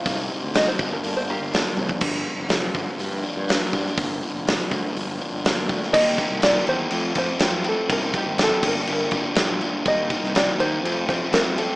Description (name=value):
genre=indie rock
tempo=122 BPM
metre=4/4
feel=straight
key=unclear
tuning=A4 = 438 Hz
part: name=open-back banjo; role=melody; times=0.0-2.0, 5.9-11.8 s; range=Bb3 to F5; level=-24 LUFS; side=equal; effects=none
part: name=crunchy overdriven guitar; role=riff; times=0.0-11.8 s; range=F2 to F4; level=-28 LUFS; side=left 1 dB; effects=none
part: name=electric guitar through a small old amp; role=riff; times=0.0-11.8 s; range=G2 to G4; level=-32 LUFS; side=right 2 dB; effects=lush chorus
part: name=fuzz fingered electric bass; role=bass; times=0.1-11.6 s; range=F1 to G2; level=-30 LUFS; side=equal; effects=overdrive
part: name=big rock drum kit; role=drums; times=0.1-11.7 s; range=crash cymbal, hi-hat, kick drum, snare drum, toms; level=-24 LUFS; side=equal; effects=none
room=little or no reverb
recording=rough home demo mix, small speaker sound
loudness=-20 LUFS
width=side -22 dB against mid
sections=0.0-2.0 A section; 2.0-5.9 B section; 5.9-11.8 C section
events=five-string banjo solo 0.0-2.0; drum fill 1.8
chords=0.1 Cm7; 0.8 Gm7; 5.9 Eb; 6.9 Fadd9; 7.9 Cm7; 8.6 Gm7; 9.9 Eb; 10.8 Fadd9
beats=| 0.06 0.55 1.04 1.53 | 2.02 2.51 3.00 3.49 | 3.98 4.47 4.96 5.45 | 5.94 6.43 6.92 7.41 | 7.90 8.39 8.88 9.37 | 9.86 10.35 10.84 11.33